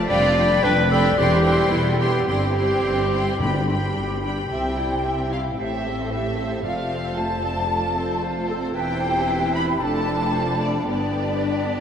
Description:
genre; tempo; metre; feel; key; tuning
classical, dramatic, fast romantic movement for symphony orchestra; 112 BPM; 4/4; straight; C major; A4 = 441 Hz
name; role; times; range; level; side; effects
warm symphonic violin section; second line; 0.0-11.8 s; D5 to C6; -28 LUFS; left 1 dB; none
rich symphonic viola section; accompaniment; 0.0-11.8 s; G3 to A4; -29 LUFS; left 1 dB; none
rich studio double bass section; bass; 0.0-11.8 s; E1 to C2; -28 LUFS; equal; none
rich symphonic cello section; bass; 0.0-11.8 s; E2 to C3; -28 LUFS; left 1 dB; none
rich symphonic violin section; melody; 0.1-11.8 s; G3 to E5; -31 LUFS; right 1 dB; none
warm clarinet; second line; 0.1-11.8 s; E4 to E5; -25 LUFS; right 1 dB; none
timpani; percussion; 3.4-4.2 s; G2; -31 LUFS; left 1 dB; none
mellow hollow large flute ensemble; second line; 4.5-11.8 s; D5 to B5; -27 LUFS; equal; none
mellow French horn section; sustained chords; 4.5-11.8 s; A3 to G4; -29 LUFS; equal; none
room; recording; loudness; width
wet huge ambient reverb, RT60 8.3 s; in a vast, echoing space; -19 LUFS; side -8 dB against mid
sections
0.0-4.5 A section; 4.5-11.8 B section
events
none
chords
0.1 G7/F; 1.2 C/E; 2.3 C/G; 3.4 G; 4.5 C; 5.6 Am7; 6.6 F; 8.8 C/E; 9.8 Dm/F; 10.9 G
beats
| 0.11 0.64 1.18 1.72 | 2.28 2.83 3.40 3.96 | 4.51 5.05 5.58 6.12 | 6.65 7.17 7.70 8.23 | 8.75 9.28 9.81 10.35 | 10.89 11.44

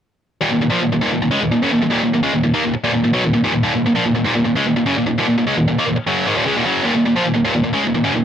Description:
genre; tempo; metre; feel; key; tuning
metal; 149 BPM; 4/4; straight; Eb minor; A4 = 440 Hz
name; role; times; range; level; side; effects
tight distorted guitar; solo; 0.4-8.2 s; Eb2 to Bb3; -15 LUFS; equal; distortion
room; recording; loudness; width
light reverb; none; -15 LUFS; side -9 dB against mid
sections
0.4-8.2 A section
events
none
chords
0.4 Ebm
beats
| 0.41 0.81 1.22 1.62 | 2.02 2.43 2.83 3.23 | 3.63 4.04 4.44 4.84 | 5.25 5.65 6.05 6.45 | 6.85 7.25 7.66 8.06

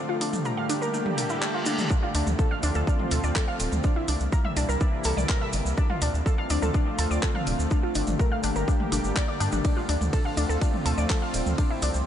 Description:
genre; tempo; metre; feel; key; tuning
melodic techno; 124 BPM; 4/4; straight; D minor; A4 = 442 Hz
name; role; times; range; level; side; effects
lush unison pad; sustained chords; 0.0-12.1 s; C3 to G4; -31 LUFS; left 1 dB; chorus, sidechain pumping
warbly dusty pluck; arpeggios; 0.0-11.9 s; A3 to F6; -30 LUFS; left 1 dB; chorus, sidechain pumping, diffuse ambient delay
house drum kit; drums; 0.2-11.9 s; handclaps, hi-hat, ride cymbal, toms; -33 LUFS; equal; none
cabasa; percussion; 0.2-12.0 s; none; -38 LUFS; right 3 dB; none
reverse cymbal; sound effects; 1.1-1.9 s; none; -39 LUFS; left 1 dB; none
electronic kick drum; drums; 1.9-11.7 s; none; -24 LUFS; equal; none
gritty driven synth bass; bass; 2.1-12.0 s; D1 to G2; -27 LUFS; equal; sidechain pumping
room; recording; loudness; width
moderate cathedral reverb, RT60 6.7 s; dreamy mix soaked in reverb, nothing above 10.7 kHz; -23 LUFS; side -10 dB against mid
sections
0.0-12.1 A section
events
break 0.0-1.9; reverse cymbal 1.1-1.9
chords
0.0 Gmadd9; 1.9 Dm7; 3.8 C7; 5.8 Dm7; 7.7 Gmadd9; 9.6 Dm7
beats
0.45 0.94 1.42 | 1.91 2.39 2.87 3.36 | 3.84 4.33 4.81 5.29 | 5.78 6.26 6.74 7.23 | 7.71 8.20 8.68 9.16 | 9.65 10.13 10.62 11.10 | 11.58

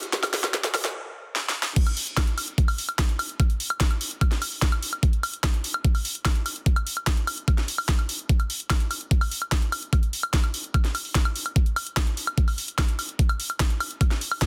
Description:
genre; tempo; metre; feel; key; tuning
trance; 147 BPM; 4/4; straight; none; none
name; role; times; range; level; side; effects
drum and bass drum kit; drums; 0.0-14.5 s; crash cymbal, hi-hat, snare drum, woodblock; -29 LUFS; equal; overdrive
electronic kick drum; drums; 0.1-14.5 s; none; -24 LUFS; equal; overdrive, high-pass filter on kick, high-pass filter on room
room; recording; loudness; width
little or no reverb; dense, heavily limited modern master, high-pass filter; -25 LUFS; mono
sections
0.0-1.8 A section; 1.8-14.5 B section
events
build-up 0.0-1.8; drum fill 0.0-0.9, 1.4-1.8; stop 0.9-1.8; drop 1.8-14.5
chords
none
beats
| 0.13 0.54 0.95 1.36 | 1.76 2.17 2.58 2.99 | 3.40 3.81 4.21 4.62 | 5.03 5.44 5.84 6.25 | 6.66 7.07 7.48 7.89 | 8.29 8.70 9.11 9.52 | 9.93 10.34 10.74 11.15 | 11.56 11.97 12.38 12.78 | 13.19 13.60 14.01 14.42

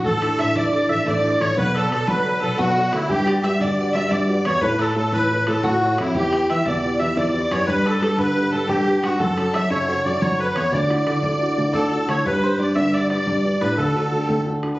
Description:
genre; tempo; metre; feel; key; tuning
celtic folk, Celtic slip jig; 118 BPM (dotted quarters); 9/8; straight; D major; A4 = 440 Hz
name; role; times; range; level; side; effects
clear fiddle; second line; 0.0-14.8 s; E4 to E5; -27 LUFS; left 2 dB; none
mandolin; second line; 0.0-14.4 s; E4 to E5; -28 LUFS; right 1 dB; none
dark upright piano; accompaniment; 0.0-14.8 s; B2 to D5; -24 LUFS; equal; none
tine electric piano; bass; 0.0-14.7 s; A1 to G3; -24 LUFS; equal; none
bodhran; percussion; 0.0-14.7 s; none; -34 LUFS; equal; none
musette accordion; melody; 0.1-14.4 s; E4 to E5; -23 LUFS; equal; none
room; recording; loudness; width
moderate recital hall reverb, RT60 1.6 s; recorded on a phone in the room, studio reverb, nothing above 7.7 kHz; -18 LUFS; side -18 dB against mid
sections
0.0-12.2 A section; 12.2-14.8 B section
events
none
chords
0.0 Asus4; 1.6 Bm7; 3.1 Gmaj7; 4.6 A; 6.1 Em; 7.7 G; 9.2 F#m; 10.7 Dadd9; 12.2 G; 13.8 D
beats
| 0.04 0.55 1.06 | 1.57 2.08 2.59 | 3.10 3.60 4.11 | 4.62 5.13 5.64 | 6.15 6.66 7.16 | 7.67 8.18 8.69 | 9.20 9.71 10.21 | 10.72 11.23 11.74 | 12.25 12.76 13.27 | 13.78 14.29

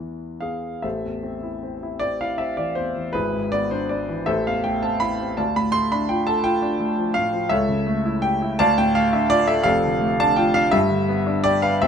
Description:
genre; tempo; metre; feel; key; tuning
classical, romantic character piece for solo piano; 45-57 BPM (dotted quarters); 6/8; rubato; A minor; A4 = 440 Hz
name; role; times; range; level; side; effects
warm grand piano; solo; 0.0-11.9 s; E1 to C6; -19 LUFS; equal; none
room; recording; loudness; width
light reverb; close, detailed microphones; -19 LUFS; side -7 dB against mid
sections
0.8-11.9 A section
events
none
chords
0.0 E; 0.8 Am; 3.1 E7/G#; 4.3 Am; 5.4 Dm; 7.5 A7/C#; 8.6 Dm; 9.7 Dm/F; 10.7 G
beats
| 0.85 2.02 | 3.15 4.28 | 5.39 6.46 | 7.51 8.59 | 9.65 10.74 | 11.83

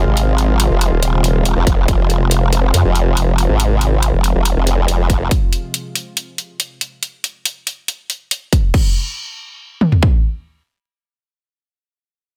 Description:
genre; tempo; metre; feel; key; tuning
heavy wobble dubstep; 140 BPM; 4/4; half-time; F minor; A4 = 441 Hz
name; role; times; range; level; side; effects
lush unison pad; sustained chords; 0.0-5.3 s; C3 to F4; -24 LUFS; equal; chorus, sidechain pumping
formant-sweep wobble bass; bass; 0.0-5.3 s; Eb1 to F2; -16 LUFS; equal; chorus, overdrive
dubstep drum kit; drums; 0.2-8.8 s; crash cymbal, hi-hat; -24 LUFS; equal; studio ambience
dubstep drum kit; drums; 1.7-2.0, 5.1-5.4, 8.5-10.1 s; kick drum, toms; -16 LUFS; equal; studio ambience
room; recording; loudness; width
digital ambience; dense, heavily limited modern master; -16 LUFS; mono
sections
0.0-8.7 A section; 8.7-12.2 B section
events
none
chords
0.0 Fm; 8.7 N.C.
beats
| 0.17 0.60 1.03 1.45 | 1.88 2.31 2.74 3.17 | 3.60 4.03 4.45 4.88 | 5.31 5.74 6.17 6.60 | 7.03 7.45 7.88 8.31 | 8.74 9.17 9.60 10.03

